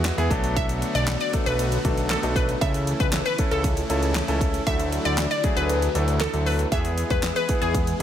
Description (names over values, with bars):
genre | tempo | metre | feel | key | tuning
dance-pop | 117 BPM | 4/4 | straight | B dorian | A4 = 443 Hz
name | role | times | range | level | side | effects
clear concert grand piano | accompaniment | 0.0-8.0 s | F#3 to A4 | -28 LUFS | equal | sidechain pumping
supersaw chords | sustained chords | 0.0-8.0 s | C#3 to G#4 | -32 LUFS | equal | sidechain pumping
fat analog bass | bass | 0.0-8.0 s | B1 to E2 | -26 LUFS | equal | sidechain pumping
pop drum kit | drums | 0.0-8.0 s | handclaps, hi-hat, kick drum, snare drum | -26 LUFS | equal | none
glassy wavetable pluck | melody | 0.6-8.0 s | G#4 to E5 | -27 LUFS | left 2 dB | chorus, ping-pong delay
room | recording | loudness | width
digital ambience | none | -21 LUFS | side -10 dB against mid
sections
0.0-8.0 A section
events
kick muted 5.7-6.7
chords
0.3 Bm7; 2.6 A/C#; 4.7 Dadd9; 6.7 E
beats
0.05 | 0.57 1.08 1.59 2.10 | 2.62 3.13 3.64 4.16 | 4.67 5.18 5.69 6.21 | 6.72 7.23 7.75